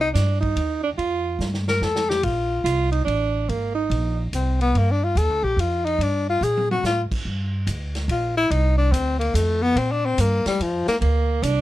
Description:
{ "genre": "jazz, small-group swing and bop", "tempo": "144 BPM", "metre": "3/4", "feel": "swing 65% on 8ths", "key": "G minor", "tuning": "A4 = 438 Hz", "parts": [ { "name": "breathy tenor saxophone", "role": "melody", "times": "0.0-11.0 s", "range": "F3 to Bb4", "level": "-22 LUFS", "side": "left 2 dB", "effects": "none" }, { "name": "upright bass", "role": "bass", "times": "0.0-11.6 s", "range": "Ab1 to Bb2", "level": "-23 LUFS", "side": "right 1 dB", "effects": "none" }, { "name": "breathy alto saxophone", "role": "second line", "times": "0.1-4.2, 11.0-11.6 s", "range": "Bb3 to F4", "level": "-24 LUFS", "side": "right 6 dB", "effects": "none" }, { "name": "vintage drum kit", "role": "drums", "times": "0.2-11.6 s", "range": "crash cymbal, hi-hat, kick drum, ride cymbal, snare drum, toms", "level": "-32 LUFS", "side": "equal", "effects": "none" } ], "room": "little or no reverb", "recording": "close, detailed microphones", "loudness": "-20 LUFS", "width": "side -15 dB against mid", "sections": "0.0-7.3 A section; 7.3-11.6 B section", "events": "drum fill 1.4-2.2, 6.4-6.8", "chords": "0.0 Cm; 1.0 Fadd9; 2.2 Bbmaj9; 3.5 Abadd9; 4.8 Gm9; 7.3 Gm; 8.5 F5; 9.8 Bb5; 11.0 Abadd9 (rootless)", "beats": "0.15 0.57 | 0.99 1.41 1.82 | 2.24 2.66 3.08 | 3.50 3.92 4.33 | 4.75 5.17 5.59 | 6.01 6.43 6.84 | 7.26 7.68 8.10 | 8.52 8.93 9.35 | 9.77 10.18 10.60 | 11.02 11.44" }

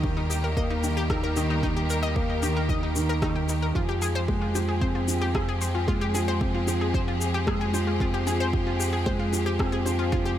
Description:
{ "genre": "piano and strings electronica", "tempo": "113 BPM", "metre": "4/4", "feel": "straight", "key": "F minor", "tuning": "A4 = 440 Hz", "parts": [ { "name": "rich studio string section", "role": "sustained chords", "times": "0.0-10.4 s", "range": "Eb3 to Bb4", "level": "-32 LUFS", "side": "equal", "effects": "sidechain pumping" }, { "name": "dark upright piano", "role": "riff", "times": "0.0-10.4 s", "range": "Eb3 to Eb4", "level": "-28 LUFS", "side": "left 1 dB", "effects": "tape echo" }, { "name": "warm sub bass", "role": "bass", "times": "0.0-10.4 s", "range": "Eb2 to F2", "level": "-29 LUFS", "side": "right 1 dB", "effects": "sidechain pumping" }, { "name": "electronic kick drum", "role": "drums", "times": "0.0-10.2 s", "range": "none", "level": "-29 LUFS", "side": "right 1 dB", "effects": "overdrive" }, { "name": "analog pluck", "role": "arpeggios", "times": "0.2-10.3 s", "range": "Eb4 to Eb5", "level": "-32 LUFS", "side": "left 3 dB", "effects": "chorus, sidechain pumping, tape echo" }, { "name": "electronic shaker and rim click", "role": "drums", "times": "0.3-10.0 s", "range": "none", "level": "-34 LUFS", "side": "left 1 dB", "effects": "overdrive" } ], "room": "light reverb, digital ambience", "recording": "none", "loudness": "-23 LUFS", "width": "side -11 dB against mid", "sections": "0.0-10.4 A section", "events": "none", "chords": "0.0 Eb; 3.8 Fmadd9", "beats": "0.04 0.57 1.10 | 1.63 2.16 2.69 3.22 | 3.75 4.29 4.82 5.35 | 5.88 6.41 6.94 7.47 | 8.00 8.53 9.06 9.60 | 10.13" }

